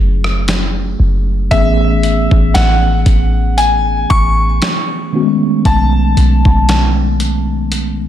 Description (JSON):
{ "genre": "contemporary R&B", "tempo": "58 BPM", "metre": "4/4", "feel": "swing 54% on 16ths", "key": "A major", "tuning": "A4 = 438 Hz", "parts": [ { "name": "mellow tine electric piano", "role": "accompaniment", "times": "0.0-8.1 s", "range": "D#3 to G#4", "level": "-17 LUFS", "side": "left 1 dB", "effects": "slow stereo tremolo" }, { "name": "clean 808-style bass", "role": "bass", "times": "0.0-8.1 s", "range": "F#1 to B1", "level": "-13 LUFS", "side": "equal", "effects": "none" }, { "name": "dusty soul sampler-style drum kit", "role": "drums", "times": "0.2-8.0 s", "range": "hi-hat, kick drum, rim click, snare drum", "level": "-17 LUFS", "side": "equal", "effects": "none" }, { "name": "bright concert grand piano", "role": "melody", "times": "1.5-7.2 s", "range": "E5 to C#6", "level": "-17 LUFS", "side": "left 1 dB", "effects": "ping-pong delay" } ], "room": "light reverb, digital ambience", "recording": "none", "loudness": "-10 LUFS", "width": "side -11 dB against mid", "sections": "0.0-8.1 A section", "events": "none", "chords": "0.0 F#m9; 1.5 Amaj9; 5.1 B13" }